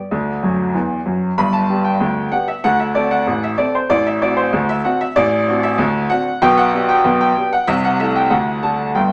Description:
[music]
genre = ragtime piano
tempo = 95 BPM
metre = 2/4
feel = straight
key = unclear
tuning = A4 = 436 Hz
[part]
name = warm grand piano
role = solo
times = 0.0-9.1 s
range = G1 to B5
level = -17 LUFS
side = equal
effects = none
[sound]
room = wet studio reverb, RT60 0.9 s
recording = none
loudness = -17 LUFS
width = mono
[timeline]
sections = 0.0-9.1 A section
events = grand piano fill 0.4-1.4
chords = 0.1 D; 1.4 G; 2.6 D5; 6.4 G/B; 7.7 Am/C; 8.3 D

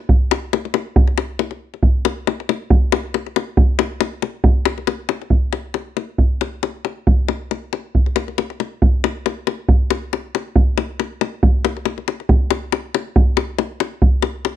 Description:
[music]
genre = balkan folk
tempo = 138 BPM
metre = 2/4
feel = swing 56% on 16ths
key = none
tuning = none
[part]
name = davul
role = percussion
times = 0.1-14.6 s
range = none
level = -16 LUFS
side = equal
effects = none
[sound]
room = light reverb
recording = dry, close 1970s-style studio recording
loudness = -17 LUFS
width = side -11 dB against mid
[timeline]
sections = 0.0-5.3 A section; 5.3-12.3 B section; 12.3-14.6 C section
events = none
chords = none

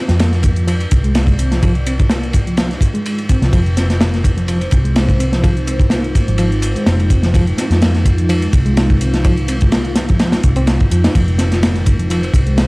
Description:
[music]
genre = breakbeat, breaks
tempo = 126 BPM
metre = 4/4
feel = swing 54% on 16ths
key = unclear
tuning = A4 = 440 Hz
[part]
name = dark analog pad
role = sustained chords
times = 0.1-12.7 s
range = Ab3 to F5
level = -25 LUFS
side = equal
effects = chorus, phaser, sidechain pumping
[part]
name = reed electric piano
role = riff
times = 0.0-12.7 s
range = F3 to Eb4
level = -21 LUFS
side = equal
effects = medium tremolo, analog delay
[part]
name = hollow-body short-scale picked electric bass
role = bass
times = 0.1-12.7 s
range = F1 to F2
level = -16 LUFS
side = equal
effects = none
[part]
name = crunchy breakbeat drum kit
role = drums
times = 0.1-12.7 s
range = kick drum, ride cymbal, snare drum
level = -15 LUFS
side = equal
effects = none
[part]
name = electronic hi-hat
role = drums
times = 0.1-12.7 s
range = none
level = -32 LUFS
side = equal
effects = none
[sound]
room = small room ambience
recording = dry, gritty hardware recording, vinyl crackle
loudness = -12 LUFS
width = side -25 dB against mid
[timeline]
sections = 0.0-12.7 A section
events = none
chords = 0.0 Fm7

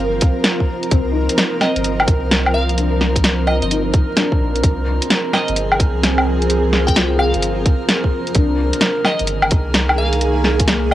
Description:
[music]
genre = future garage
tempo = 129 BPM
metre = 4/4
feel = swing 65% on 16ths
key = C minor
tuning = A4 = 440 Hz
[part]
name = glassy wavetable pluck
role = melody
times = 0.0-10.9 s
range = Eb5 to G5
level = -25 LUFS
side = right 1 dB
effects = chorus, cassette tape, analog delay
[part]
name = felt-muted upright piano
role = accompaniment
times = 0.0-10.9 s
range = Bb3 to Ab4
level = -26 LUFS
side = left 6 dB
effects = sidechain pumping, cassette tape, tape echo
[part]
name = granular cloud pad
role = sustained chords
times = 0.0-10.9 s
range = Eb3 to Bb4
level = -21 LUFS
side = right 1 dB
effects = built-in reverb, sidechain pumping, cassette tape
[part]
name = soft dub sub bass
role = bass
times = 0.0-10.9 s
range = G1 to C2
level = -20 LUFS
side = equal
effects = sidechain pumping
[part]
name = drifting glass-harmonics texture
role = texture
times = 0.0-10.9 s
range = Bb4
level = -28 LUFS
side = right 3 dB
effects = chorus, built-in reverb, cassette tape
[part]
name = electronic kick drum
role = drums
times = 0.2-10.7 s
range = none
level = -16 LUFS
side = equal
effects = cassette tape
[part]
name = garage drum kit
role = drums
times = 0.2-10.9 s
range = hi-hat, snare drum, woodblock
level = -17 LUFS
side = equal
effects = cassette tape
[sound]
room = light reverb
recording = home recording on cassette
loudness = -14 LUFS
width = side -14 dB against mid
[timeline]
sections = 0.0-10.9 A section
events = none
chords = 0.0 Cm7; 4.6 Ab6; 8.4 Bb7sus4

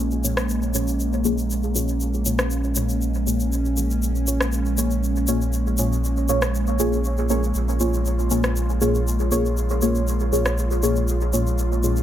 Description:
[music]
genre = dub techno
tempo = 119 BPM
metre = 4/4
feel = straight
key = Bb minor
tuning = A4 = 440 Hz
[part]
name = airy breathy pad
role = sustained chords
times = 0.0-12.0 s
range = Ab3 to F4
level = -27 LUFS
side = right 1 dB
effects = chorus
[part]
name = soft dub sub bass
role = bass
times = 0.0-12.0 s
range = Bb1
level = -23 LUFS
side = equal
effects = none
[part]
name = egg shaker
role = percussion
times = 0.1-12.0 s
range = none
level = -30 LUFS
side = left 2 dB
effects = none
[part]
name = deep mellow chord stab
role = stabs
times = 0.2-12.0 s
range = Bb3 to Db5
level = -25 LUFS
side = left 1 dB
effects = chorus, phaser, dub echo
[part]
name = electronic rim click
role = drums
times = 0.4-10.6 s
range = none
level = -27 LUFS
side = equal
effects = dub echo
[sound]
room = light reverb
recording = none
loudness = -20 LUFS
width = side -11 dB against mid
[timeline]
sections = 0.0-12.0 A section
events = none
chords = 0.0 Bbm7

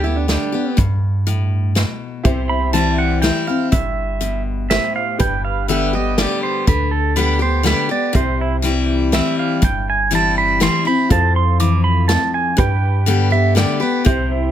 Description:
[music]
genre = honky-tonk and classic country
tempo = 122 BPM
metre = 3/4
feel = straight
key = C major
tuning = A4 = 440 Hz
[part]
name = pedal steel guitar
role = second line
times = 0.0-14.5 s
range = D4 to D6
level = -20 LUFS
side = right 6 dB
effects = none
[part]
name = picked steel-string acoustic guitar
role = accompaniment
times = 0.0-14.5 s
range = F2 to G4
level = -20 LUFS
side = left 5 dB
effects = none
[part]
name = pure sine sub bass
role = bass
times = 0.0-14.5 s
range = G1 to G2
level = -19 LUFS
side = equal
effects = none
[part]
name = natural country drum kit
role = drums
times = 0.3-14.2 s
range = hi-hat, kick drum, snare drum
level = -19 LUFS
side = equal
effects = none
[part]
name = honky-tonk upright piano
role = accompaniment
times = 2.2-14.5 s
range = D4 to C5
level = -28 LUFS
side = right 1 dB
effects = none
[sound]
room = little or no reverb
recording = close, detailed microphones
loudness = -15 LUFS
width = side -10 dB against mid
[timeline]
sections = 0.0-2.3 A section; 2.3-14.5 B section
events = pedal steel guitar solo 2.3-14.5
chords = 0.0 G; 2.3 C; 5.2 G; 8.2 C; 11.1 F; 12.6 G

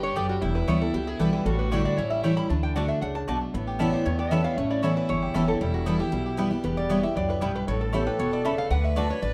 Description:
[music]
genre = bluegrass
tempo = 232 BPM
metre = 4/4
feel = straight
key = unclear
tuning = A4 = 440 Hz
[part]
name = bluegrass banjo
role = melody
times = 0.0-9.3 s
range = E3 to G4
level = -39 LUFS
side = equal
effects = none
[part]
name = lap resonator guitar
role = melody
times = 0.0-9.3 s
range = F#4 to B5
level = -33 LUFS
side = equal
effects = none
[part]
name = rich fiddle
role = second line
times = 0.0-9.3 s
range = B3 to B4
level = -35 LUFS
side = equal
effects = none
[part]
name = picked steel-string acoustic guitar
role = accompaniment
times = 0.0-9.3 s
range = E2 to F#4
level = -29 LUFS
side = equal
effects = none
[part]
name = upright bass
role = bass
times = 0.0-9.3 s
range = E1 to E2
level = -32 LUFS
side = equal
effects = none
[part]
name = mandolin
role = stabs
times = 0.2-9.1 s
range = A3 to B5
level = -36 LUFS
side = equal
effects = none
[sound]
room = moderate studio reverb, RT60 0.8 s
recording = dark, warm production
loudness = -26 LUFS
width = mono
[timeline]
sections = 0.0-3.5 A section; 3.5-9.3 B section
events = none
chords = 0.4 Em; 1.5 A7sus4; 2.0 A7; 2.5 D; 3.5 Aadd9; 5.6 Em; 7.7 Aadd9; 8.7 D

